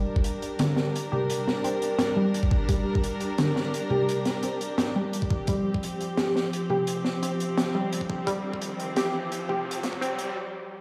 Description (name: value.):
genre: half-time drum and bass.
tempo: 172 BPM.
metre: 4/4.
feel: half-time.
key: G minor.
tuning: A4 = 440 Hz.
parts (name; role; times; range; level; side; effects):
warm chamber string section; sustained chords; 0.0-10.8 s; F3 to Bb4; -33 LUFS; equal; sidechain pumping.
warbly dusty pluck; arpeggios; 0.0-10.1 s; D3 to G4; -32 LUFS; equal; chorus, phaser, digital delay.
electronic kick drum; drums; 0.2, 2.4-3.0, 5.2-5.8, 8.0-10.0 s; none; -28 LUFS; equal; overdrive.
open jazz drum kit; drums; 0.2-10.3 s; hi-hat, snare drum, toms; -32 LUFS; equal; none.
riser; sound effects; 7.3-10.4 s; none; -41 LUFS; equal; none.
room: wet echo chamber reverb, RT60 1.4 s, small room ambience.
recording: played on a big sound system in a bare room, stone room reverb, high-pass filter.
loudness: -27 LUFS.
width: mono.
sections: 0.0-10.8 A section.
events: build-up 0.0-10.8; filter sweep 0.0-10.8; riser 7.3-10.4; break 10.4-10.8.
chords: 0.0 Gm; 5.5 F5.